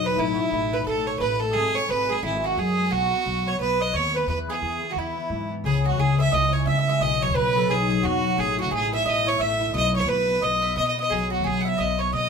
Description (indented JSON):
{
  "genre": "celtic folk, Celtic hornpipe",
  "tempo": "176 BPM",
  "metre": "4/4",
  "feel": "swing 61% on 8ths",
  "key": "unclear",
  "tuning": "A4 = 440 Hz",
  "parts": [
    { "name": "clear fiddle", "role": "melody", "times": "0.0-12.3 s", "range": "E4 to F#5", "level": "-24 LUFS", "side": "right 2 dB", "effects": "none" },
    { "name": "mandolin", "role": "second line", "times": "0.0-12.3 s", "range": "E4 to E5", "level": "-30 LUFS", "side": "right 7 dB", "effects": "none" },
    { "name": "mellow accordion", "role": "second line", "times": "0.0-12.3 s", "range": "D#4 to E5", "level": "-30 LUFS", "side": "left 2 dB", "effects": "none" },
    { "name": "concert harp", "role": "accompaniment", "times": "0.0-12.3 s", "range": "B2 to F#4", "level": "-28 LUFS", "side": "left 7 dB", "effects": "none" },
    { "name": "upright bass", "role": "bass", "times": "0.0-12.3 s", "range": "G#1 to C#3", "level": "-28 LUFS", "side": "right 1 dB", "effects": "none" }
  ],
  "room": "moderate studio reverb, RT60 0.7 s",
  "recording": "band playing live in one room",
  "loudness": "-21 LUFS",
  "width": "side -6 dB against mid",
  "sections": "0.0-5.6 A section; 5.6-12.3 B section",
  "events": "none",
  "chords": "0.2 A5; 1.5 E69/G#; 2.9 B; 4.3 E; 5.6 C#m; 7.0 B; 8.4 A; 9.7 B",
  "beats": "| 0.18 0.52 0.86 1.21 | 1.55 1.89 2.23 2.57 | 2.92 3.26 3.60 3.94 | 4.28 4.62 4.96 5.31 | 5.65 5.99 6.33 6.67 | 7.01 7.35 7.69 8.03 | 8.37 8.71 9.05 9.39 | 9.73 10.08 10.42 10.76 | 11.10 11.44 11.78 12.12"
}